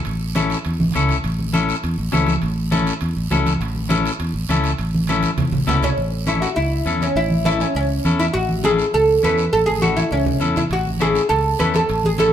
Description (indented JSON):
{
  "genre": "latin, cumbia",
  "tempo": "203 BPM",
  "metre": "4/4",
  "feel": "straight",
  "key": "A major",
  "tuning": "A4 = 442 Hz",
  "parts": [
    { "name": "timbales", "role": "percussion", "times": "0.0-6.0, 10.7-12.3 s", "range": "none", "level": "-34 LUFS", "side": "right 7 dB", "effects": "none" },
    { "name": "fingered electric bass", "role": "bass", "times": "0.1-12.3 s", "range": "A1 to E2", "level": "-22 LUFS", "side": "equal", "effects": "none" },
    { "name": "congas", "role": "percussion", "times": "0.1-12.3 s", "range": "none", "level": "-24 LUFS", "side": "right 1 dB", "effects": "none" },
    { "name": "guiro", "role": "percussion", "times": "0.1-12.3 s", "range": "none", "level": "-32 LUFS", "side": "right 7 dB", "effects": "none" },
    { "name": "clean electric guitar", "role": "accompaniment", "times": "0.4-12.3 s", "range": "C#4 to A4", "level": "-24 LUFS", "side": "left 5 dB", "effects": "none" },
    { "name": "oud", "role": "melody", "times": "5.7-12.3 s", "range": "B3 to B4", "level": "-19 LUFS", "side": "right 1 dB", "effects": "none" }
  ],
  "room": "moderate stone room reverb, RT60 1.2 s",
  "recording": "band playing live in one room",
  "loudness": "-16 LUFS",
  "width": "side -10 dB against mid",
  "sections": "0.0-6.0 A section; 6.0-12.3 B section",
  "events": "drum fill 0.8-1.2, 5.2-6.0, 9.8-10.7",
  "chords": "0.0 A"
}